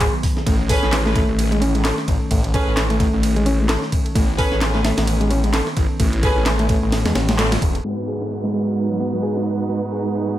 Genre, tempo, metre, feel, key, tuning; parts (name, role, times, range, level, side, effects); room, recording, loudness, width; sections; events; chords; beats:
breakbeat, breaks; 130 BPM; 4/4; swing 57% on 16ths; A4 = 440 Hz
mellow tonewheel organ; sustained chords; 0.0-10.4 s; G#2 to F#4; -27 LUFS; equal; slow rotary speaker, vintage 12-bit sampler grit, sidechain pumping
reed electric piano; riff; 0.0-10.3 s; F#3 to A4; -24 LUFS; left 1 dB; fast tremolo, tube saturation, vintage 12-bit sampler grit, low-pass filter, digital delay
phased detuned saw bass; bass; 0.0-7.8 s; E1 to E2; -21 LUFS; equal; phaser
breakbeat sampler-style drum kit; drums; 0.0-10.4 s; hi-hat, kick drum, ride cymbal, snare drum; -21 LUFS; equal; high-pass filter on kick, high-pass filter on cymbals, high-pass filter on hats, high-pass filter on snare, high-pass filter on room
electronic handclaps and shaker; drums; 0.0-10.4 s; -26 LUFS; equal; overdrive
dark chamber string section; stabs; 0.7-10.4 s; G#3 to B4; -25 LUFS; right 3 dB; digital delay
downlifter; sound effects; 7.8-10.4 s; -35 LUFS; equal
little or no reverb; low-pass filter; -17 LUFS; side -13 dB against mid
0.0-7.8 A section; 7.8-10.4 B section
band accent 7.4
0.5 Amaj7; 7.8 G#m7
0.00 | 0.46 0.93 1.39 1.85 | 2.31 2.77 3.23 3.69 | 4.16 4.62 5.08 5.54 | 6.00 6.46 6.92 7.39 | 7.85 8.31 8.77 9.23 | 9.69 10.16